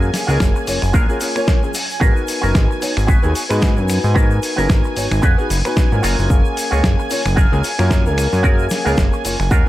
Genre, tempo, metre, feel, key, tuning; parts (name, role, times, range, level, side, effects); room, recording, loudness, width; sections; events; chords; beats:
nu-disco, nu disco; 112 BPM; 4/4; swing 56% on 16ths; A4 = 441 Hz
dark grand piano; accompaniment; 0.0-9.7 s; A#3 to E#5; -22 LUFS; left 2 dB; tape echo
lush unison pad; sustained chords; 0.0-9.7 s; G#5; -27 LUFS; right 2 dB; chorus, sidechain pumping
electric guitar with an envelope filter; riff; 0.0-9.7 s; B3 to C#5; -25 LUFS; right 2 dB; lush chorus, tape echo
fat analog bass; bass; 0.0-9.6 s; F#1 to G#2; -18 LUFS; equal; tube saturation, sidechain pumping
egg shaker; percussion; 0.0-9.6 s; -33 LUFS; left 6 dB
dusty soul sampler-style drum kit; drums; 0.1-9.5 s; finger snaps, hi-hat, snare drum; -23 LUFS; equal
electronic kick drum; drums; 0.4-9.6 s; -15 LUFS; equal
little or no reverb; -14 LUFS; side -15 dB against mid
0.0-9.7 A section
0.0 F#maj9; 2.0 G#m9; 6.0 F#maj9
0.41 0.94 1.48 | 2.01 2.55 3.09 3.62 | 4.16 4.69 5.23 5.76 | 6.30 6.84 7.37 7.91 | 8.44 8.98 9.51